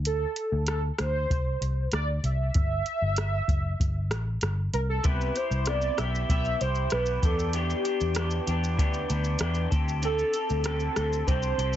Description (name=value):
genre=indie pop, bedroom pop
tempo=96 BPM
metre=4/4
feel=straight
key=unclear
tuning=A4 = 440 Hz
part: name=vintage muted picked electric bass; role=bass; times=0.0-11.8 s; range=F#1 to E2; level=-28 LUFS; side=equal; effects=none
part: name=warm velvety synth lead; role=melody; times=0.1-11.8 s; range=G4 to E5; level=-30 LUFS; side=right 1 dB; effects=lush chorus, ping-pong delay
part: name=soft vintage rhythm box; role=drums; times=0.1-11.8 s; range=hi-hat, kick drum, rim click, shaker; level=-28 LUFS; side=equal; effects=none
part: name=electric guitar through a small old amp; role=accompaniment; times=5.0-11.8 s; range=C3 to A4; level=-32 LUFS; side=left 1 dB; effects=lush chorus, vibrato effect
room=light reverb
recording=heavily compressed radio sound, nothing above 7.8 kHz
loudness=-25 LUFS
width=side -11 dB against mid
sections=0.0-11.8 A section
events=none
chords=0.0 D5; 2.6 F#7(no3) (rootless); 5.0 Cmaj7; 7.2 Em7; 9.7 D7sus4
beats=| 0.05 0.68 1.30 1.93 | 2.55 3.18 3.80 4.42 | 5.05 5.67 6.29 6.92 | 7.54 8.16 8.79 9.41 | 10.03 10.65 11.28